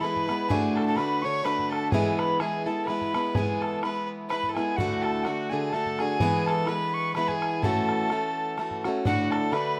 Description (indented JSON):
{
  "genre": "celtic folk, Celtic waltz",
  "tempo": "126 BPM",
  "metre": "3/4",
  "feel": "swing 56% on 8ths",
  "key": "unclear",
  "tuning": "A4 = 440 Hz",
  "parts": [
    { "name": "breathy mellow mid whistle", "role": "melody", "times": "0.0-9.8 s", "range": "F#5 to C#6", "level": "-32 LUFS", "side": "equal", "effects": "none" },
    { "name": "clear fiddle", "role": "second line", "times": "0.0-9.8 s", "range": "F#4 to C#5", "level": "-35 LUFS", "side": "equal", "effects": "none" },
    { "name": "picked plugged-in steel-string acoustic guitar", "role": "accompaniment", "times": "0.0-9.8 s", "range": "D2 to F#4", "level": "-30 LUFS", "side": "equal", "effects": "none" },
    { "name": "bodhran", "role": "percussion", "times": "0.0-9.7 s", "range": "none", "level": "-35 LUFS", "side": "equal", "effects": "none" }
  ],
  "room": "light reverb, small room ambience",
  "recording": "rough home demo mix",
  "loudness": "-27 LUFS",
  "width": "mono",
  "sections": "0.0-9.1 A section",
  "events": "none",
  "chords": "0.5 D; 1.9 E; 4.8 D; 6.2 E; 7.6 A6; 9.1 D",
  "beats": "0.02 | 0.49 0.97 1.44 | 1.92 2.40 2.87 | 3.35 3.82 4.30 | 4.78 5.25 5.73 | 6.20 6.68 7.15 | 7.63 8.11 8.58 | 9.06 9.53"
}